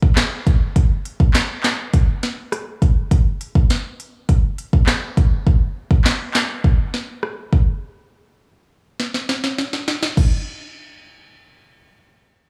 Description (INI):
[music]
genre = dancehall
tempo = 102 BPM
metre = 4/4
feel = straight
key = none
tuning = none
[part]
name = afro-pop drum kit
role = drums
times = 0.0-10.3 s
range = crash cymbal, handclaps, hi-hat, kick drum, rim click, snare drum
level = -18 LUFS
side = equal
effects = none
[sound]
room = digital ambience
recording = studio reverb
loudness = -19 LUFS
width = mono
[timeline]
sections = 0.0-5.5 A section; 5.5-10.2 B section; 10.2-12.5 C section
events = drum fill 9.0-10.2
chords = none